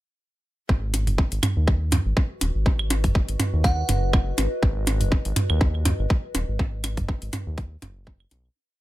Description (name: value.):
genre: minimal techno.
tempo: 122 BPM.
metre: 4/4.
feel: swing 55% on 16ths.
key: G# minor.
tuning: A4 = 440 Hz.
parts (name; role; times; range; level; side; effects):
round analog bass; bass; 0.7-8.5 s; D#1 to D#2; -24 LUFS; equal; sidechain pumping.
electronic kick drum; drums; 0.7-8.2 s; none; -21 LUFS; equal; studio reverb.
electronic percussion blips, toms and claves; percussion; 0.7-8.4 s; none; -27 LUFS; right 2 dB; studio reverb.
warbly tape-like pad; texture; 2.1-8.6 s; F#4 to D#5; -35 LUFS; left 1 dB; chorus, built-in reverb, sidechain pumping.
electronic hi-hat; drums; 0.9-8.4 s; none; -29 LUFS; left 4 dB; studio reverb.
glassy synth bell; melody; 3.6-4.0 s; F#5; -29 LUFS; right 3 dB; chorus, tremolo, vintage 12-bit sampler grit, digital delay.
room: little or no reverb.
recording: none.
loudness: -21 LUFS.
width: side -16 dB against mid.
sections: 0.7-8.6 groove.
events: fade-in on ambient pad 0.7-8.6; fade-out 5.9-8.6.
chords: 0.7 G#m7.